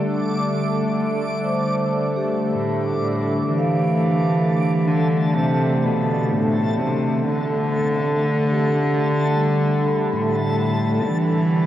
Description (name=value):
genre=ambient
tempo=63 BPM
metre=4/4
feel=straight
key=D dorian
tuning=A4 = 440 Hz
part: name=warm analog pad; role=sustained chords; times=0.0-11.7 s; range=D3 to A4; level=-24 LUFS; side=equal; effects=chorus, tremolo
part: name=vibraphone with medium mallets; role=arpeggios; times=0.0-11.7 s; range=G3 to B5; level=-26 LUFS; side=equal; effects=ping-pong delay
part: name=organ-like drone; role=drone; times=0.0-11.7 s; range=D3 to A3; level=-30 LUFS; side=left 1 dB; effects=none
part: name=backwards swelling texture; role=texture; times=0.0-11.7 s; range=A5 to D6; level=-31 LUFS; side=equal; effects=built-in reverb
part: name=rich cello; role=melody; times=2.5-11.7 s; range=A2 to E3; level=-20 LUFS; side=equal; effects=ping-pong delay
room=wet huge ambient reverb, RT60 7.7 s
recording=worn, warbling old tape, cassette tape, warbly pitch drift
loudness=-18 LUFS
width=side -12 dB against mid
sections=0.0-3.5 A section; 3.5-11.7 B section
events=none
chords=0.0 D5; 3.5 Dm7